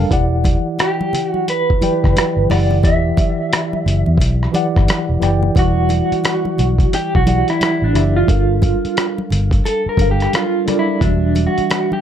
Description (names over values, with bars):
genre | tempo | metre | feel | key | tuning
R&B, neo-soul | 88 BPM | 4/4 | swing 61% on 16ths | unclear | A4 = 440 Hz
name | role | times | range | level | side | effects
mellow tine electric piano | accompaniment | 0.0-12.0 s | E3 to A5 | -20 LUFS | left 1 dB | medium stereo tremolo
vintage muted fingered electric bass | bass | 0.0-11.6 s | E1 to E2 | -17 LUFS | equal | none
dusty soul sampler-style drum kit | drums | 0.1-11.9 s | hi-hat, kick drum, rim click | -18 LUFS | equal | none
congas | percussion | 0.4-12.0 s | none | -26 LUFS | right 2 dB | none
electric guitar through a small old amp | melody | 0.8-12.0 s | D4 to E5 | -19 LUFS | right 3 dB | tremolo
room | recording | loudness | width
light reverb | dark, warm production | -13 LUFS | side -9 dB against mid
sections
0.0-5.6 A section; 5.6-12.0 B section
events
clean electric guitar solo 5.6-12.0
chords
0.1 Em9; 8.3 Gm9; 11.0 Em9